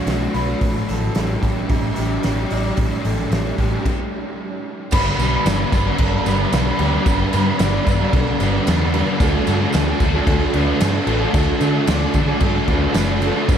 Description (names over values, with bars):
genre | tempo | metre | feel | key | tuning
rock, shoegaze and dream pop | 112 BPM | 4/4 | straight | G major | A4 = 440 Hz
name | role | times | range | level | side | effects
electric guitar through a small old amp | arpeggios | 0.0-13.6 s | F#4 to D5 | -27 LUFS | left 1 dB | wide subtle chorus, ping-pong delay
crunchy overdriven guitar | riff | 0.0-13.6 s | A2 to B4 | -24 LUFS | right 6 dB | reverse reverb
thick fuzz guitar | riff | 0.0-13.6 s | G2 to E4 | -24 LUFS | left 6 dB | distortion, ensemble chorus
vintage muted fingered electric bass | bass | 0.1-13.6 s | F#1 to D3 | -22 LUFS | equal | none
loose indie drum kit | drums | 0.1-13.6 s | crash cymbal, hi-hat, kick drum, snare drum | -22 LUFS | equal | none
distorted electric guitar | riff | 4.9-13.6 s | G2 to D4 | -26 LUFS | right 3 dB | overdrive
tambourine | percussion | 4.9-13.6 s | none | -40 LUFS | right 8 dB | none
room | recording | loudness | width
wet huge ambient reverb, RT60 6.7 s | dreamy mix soaked in reverb | -16 LUFS | side -8 dB against mid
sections
0.0-4.9 A section; 4.9-13.6 A section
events
stop 3.9-4.9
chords
0.0 Bm7; 0.6 A7sus4; 4.9 G; 9.2 D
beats
0.07 | 0.62 1.16 1.70 2.24 | 2.78 3.32 3.86 4.39 | 4.93 5.47 6.00 6.54 | 7.07 7.61 8.14 8.68 | 9.21 9.74 10.28 10.81 | 11.35 11.88 12.42 12.95 | 13.49